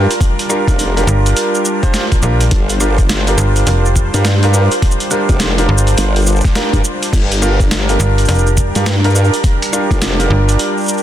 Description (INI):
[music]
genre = glitch hop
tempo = 104 BPM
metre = 4/4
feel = swing 63% on 16ths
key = G minor pentatonic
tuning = A4 = 444 Hz
[part]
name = warm analog pad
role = sustained chords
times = 0.0-11.0 s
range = G3 to C5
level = -21 LUFS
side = right 1 dB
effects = chorus, vintage 12-bit sampler grit, sidechain pumping
[part]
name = warm concert grand piano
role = stabs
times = 0.0-11.0 s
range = D4 to C5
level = -18 LUFS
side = right 1 dB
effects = vintage 12-bit sampler grit, sidechain pumping, tape echo
[part]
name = formant-sweep wobble bass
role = bass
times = 0.0-10.3 s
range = F1 to G2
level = -14 LUFS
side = equal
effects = chorus
[part]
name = boom bap sampler-style drum kit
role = drums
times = 0.1-11.0 s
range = crash cymbal, hi-hat, rim click, shaker, snare drum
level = -19 LUFS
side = equal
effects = none
[part]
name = electronic kick drum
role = drums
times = 0.2-10.0 s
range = none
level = -15 LUFS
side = equal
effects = none
[part]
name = slap-like FM bass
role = bass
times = 1.1-10.6 s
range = F1 to Bb1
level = -12 LUFS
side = equal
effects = none
[sound]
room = light reverb, digital ambience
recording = dense, heavily limited modern master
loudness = -11 LUFS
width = side -11 dB against mid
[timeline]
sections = 0.0-11.0 A section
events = none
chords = 0.0 Gm7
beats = | 0.21 0.78 1.36 1.94 | 2.52 3.09 3.67 4.25 | 4.82 5.40 5.98 6.55 | 7.13 7.71 8.28 8.86 | 9.44 10.02 10.59